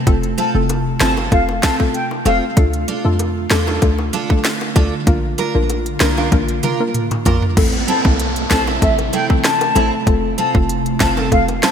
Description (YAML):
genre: dancehall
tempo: 96 BPM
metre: 4/4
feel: straight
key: unclear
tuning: A4 = 439 Hz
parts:
  - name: ethereal airy pad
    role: sustained chords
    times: 0.0-11.7 s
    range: C3 to F4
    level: -25 LUFS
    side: equal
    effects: ensemble chorus, built-in reverb, phaser, sidechain pumping
  - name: soft round pluck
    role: accompaniment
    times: 0.1-11.5 s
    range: A3 to Bb4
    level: -22 LUFS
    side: left 3 dB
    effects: chorus
  - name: short 808-style bass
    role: bass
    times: 0.1-11.6 s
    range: F1 to F2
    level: -20 LUFS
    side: equal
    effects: none
  - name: island pop drum kit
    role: drums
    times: 0.1-11.7 s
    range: crash cymbal, hi-hat, kick drum, snare drum, toms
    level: -18 LUFS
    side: equal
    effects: gated reverb
  - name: mellow concert flute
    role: melody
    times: 0.4-2.4, 7.9-11.7 s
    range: E5 to A5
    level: -20 LUFS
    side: left 2 dB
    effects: digital delay
  - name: picked steel-string acoustic guitar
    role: arpeggios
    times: 0.4-11.7 s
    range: C4 to Bb4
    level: -24 LUFS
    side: right 7 dB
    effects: analog chorus, digital delay
  - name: bongos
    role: percussion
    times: 0.7-11.7 s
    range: none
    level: -31 LUFS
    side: left 6 dB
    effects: none
  - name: downlifter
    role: sound effects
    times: 7.6-11.7 s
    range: none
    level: -26 LUFS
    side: right 3 dB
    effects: none
room: moderate lush hall reverb, RT60 2.6 s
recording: bright 1980s-style digital production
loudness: -14 LUFS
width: side -8 dB against mid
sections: 0.0-7.6 A section; 7.6-11.7 B section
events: drum fill 6.3-7.6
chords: 0.1 F; 2.6 Dm; 5.1 Bb; 7.6 Am; 10.1 F